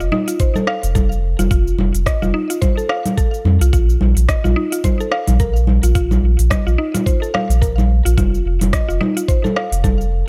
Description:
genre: organic downtempo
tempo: 108 BPM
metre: 4/4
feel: swing 57% on 16ths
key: unclear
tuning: A4 = 441 Hz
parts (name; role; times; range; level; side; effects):
- mallet-like synth pluck; arpeggios; 0.0-10.0 s; Eb4 to F5; -25 LUFS; equal; chorus, vintage 12-bit sampler grit, digital delay
- warm sub bass; bass; 0.0-10.2 s; F1 to F2; -17 LUFS; equal; none
- organic electronic drum kit; drums; 0.0-10.1 s; congas, hi-hat, rim click, shaker; -24 LUFS; equal; overdrive
- electronic kick drum; drums; 0.4-10.0 s; none; -20 LUFS; equal; none
room: digital ambience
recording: none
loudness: -16 LUFS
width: mono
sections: 0.0-10.3 A section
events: none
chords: 0.0 F; 3.7 Bb5; 8.2 F

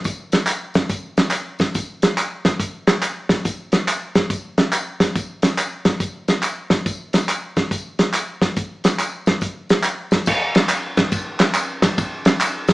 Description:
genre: gospel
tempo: 141 BPM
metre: 4/4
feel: swing 65% on 8ths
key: none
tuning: none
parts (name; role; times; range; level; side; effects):
- tambourine and handclaps; percussion; 0.0-12.7 s; none; -25 LUFS; equal; none
- warm soul drum kit; drums; 0.1-12.7 s; crash cymbal, hi-hat, kick drum, ride cymbal, snare drum; -17 LUFS; equal; none
room: moderate large studio reverb, RT60 0.9 s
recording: band playing live in one room, small speaker sound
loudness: -18 LUFS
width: side -20 dB against mid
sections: 0.0-10.3 A section; 10.3-12.7 B section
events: none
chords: none

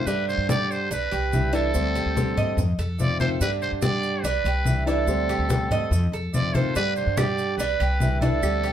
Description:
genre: latin, Cuban son and guajira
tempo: 144 BPM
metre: 4/4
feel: straight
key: G major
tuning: A4 = 440 Hz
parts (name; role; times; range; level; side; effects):
- trumpet with metal mute; melody; 0.0-8.7 s; A4 to D5; -28 LUFS; equal; none
- flamenco guitar; accompaniment; 0.0-8.7 s; D3 to G4; -28 LUFS; left 2 dB; none
- upright bass; bass; 0.0-8.7 s; C2 to G2; -27 LUFS; equal; none
- Cuban tres; arpeggios; 0.1-8.7 s; D4 to Eb5; -28 LUFS; right 7 dB; none
- congas; percussion; 0.1-8.7 s; none; -27 LUFS; left 2 dB; none
- maracas; percussion; 0.1-8.7 s; none; -41 LUFS; right 4 dB; none
- claves; percussion; 7.2-8.6 s; none; -36 LUFS; right 4 dB; none
room: wet studio ambience, RT60 0.5 s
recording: heard from further back in the room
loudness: -21 LUFS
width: side -10 dB against mid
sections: 0.1-8.7 A section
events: none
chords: 0.1 G5; 0.9 Cadd9; 1.7 D7sus4; 2.6 F7; 3.4 G5; 4.2 Cadd9; 5.1 D7sus4; 5.9 F7; 6.8 G5; 7.6 Cadd9

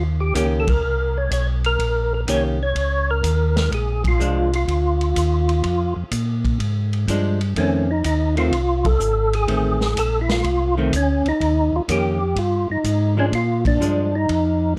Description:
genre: soul jazz organ trio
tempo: 125 BPM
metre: 4/4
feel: swing 68% on 8ths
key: unclear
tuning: A4 = 440 Hz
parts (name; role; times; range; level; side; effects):
- percussive tonewheel organ; melody; 0.0-14.7 s; Db4 to Db5; -24 LUFS; equal; slow rotary speaker, chorus vibrato, plate reverb
- mellow tonewheel organ; bass; 0.0-14.8 s; Ab1 to Bb2; -24 LUFS; equal; slow rotary speaker
- vintage hollow-body jazz guitar; accompaniment; 0.3-14.1 s; Eb3 to G4; -25 LUFS; equal; none
- vintage drum kit; drums; 0.3-14.4 s; hi-hat, kick drum, ride cymbal, snare drum; -30 LUFS; equal; none
room: light reverb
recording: dark, warm production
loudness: -20 LUFS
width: mono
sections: 0.0-14.8 A section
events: band accent 0.6, 4.0, 8.8, 13.6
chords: 0.0 Eb7; 3.7 Bb7; 7.6 F7; 11.4 Eb7; 13.3 Bb7

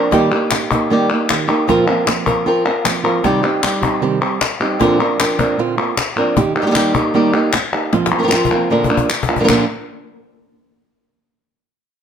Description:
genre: flamenco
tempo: 154 BPM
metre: 4/4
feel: straight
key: Bb major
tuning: A4 = 439 Hz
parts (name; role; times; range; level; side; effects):
- flamenco guitar; melody; 0.0-9.6 s; Bb2 to Bb4; -16 LUFS; right 1 dB; plate reverb
- flamenco guitar; stabs; 0.0-9.6 s; F2 to G4; -20 LUFS; right 5 dB; none
- cajon; percussion; 0.1-9.6 s; none; -22 LUFS; left 6 dB; none
- palmas hand claps; percussion; 0.3-9.6 s; none; -20 LUFS; left 4 dB; none
room: moderate studio reverb, RT60 0.8 s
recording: none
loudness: -13 LUFS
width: side -8 dB against mid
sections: 0.0-9.5 A section; 9.5-11.0 B section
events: drum fill 7.9-9.5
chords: 0.1 Eb; 1.7 Fsus4; 3.2 Cm; 4.8 Bbadd9; 6.4 Eb; 7.9 Fsus4; 8.7 Bb

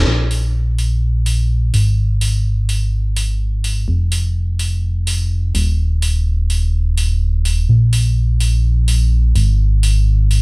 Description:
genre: piano house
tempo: 126 BPM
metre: 4/4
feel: swing 59% on 16ths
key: unclear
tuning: A4 = 438 Hz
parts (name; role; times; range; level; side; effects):
- fat analog bass; bass; 0.0-10.4 s; Eb1 to Bb1; -14 LUFS; equal; none
- electronic hi-hat; drums; 0.3-10.4 s; none; -22 LUFS; equal; overdrive
room: little or no reverb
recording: dry, gritty hardware recording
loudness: -14 LUFS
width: side -31 dB against mid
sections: 0.1-10.4 A section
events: none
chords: none

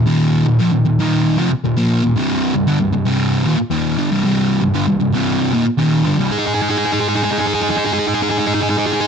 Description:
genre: metal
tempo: 115 BPM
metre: 4/4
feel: straight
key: unclear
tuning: A4 = 440 Hz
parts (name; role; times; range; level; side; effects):
- sludgy distorted guitar; solo; 0.0-9.1 s; C2 to Ab4; -14 LUFS; equal; overdrive
room: moderate studio reverb, RT60 0.7 s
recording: dark, warm production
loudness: -14 LUFS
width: side -7 dB against mid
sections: 0.0-6.3 A section; 6.3-9.1 B section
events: half time 6.3-9.1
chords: 0.0 Eb5; 2.2 Cm; 6.3 Ab5

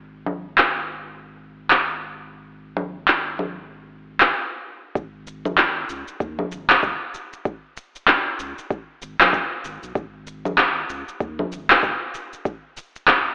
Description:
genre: organic downtempo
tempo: 96 BPM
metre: 4/4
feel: swing 60% on 16ths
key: unclear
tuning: A4 = 439 Hz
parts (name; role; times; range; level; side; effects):
- warm sub bass; bass; 0.0-12.0 s; F#1 to D#2; -40 LUFS; equal; none
- electronic congas, handclaps and shaker; drums; 0.3-13.2 s; none; -18 LUFS; equal; low-pass filter on perc, low-pass filter on snare
- electronic kick drum; drums; 5.0-13.2 s; none; -27 LUFS; equal; none
room: moderate concert hall reverb, RT60 1.7 s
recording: telephone sound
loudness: -19 LUFS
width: side -27 dB against mid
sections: 0.0-5.0 A section; 5.0-13.3 B section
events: stop 4.3-5.0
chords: none

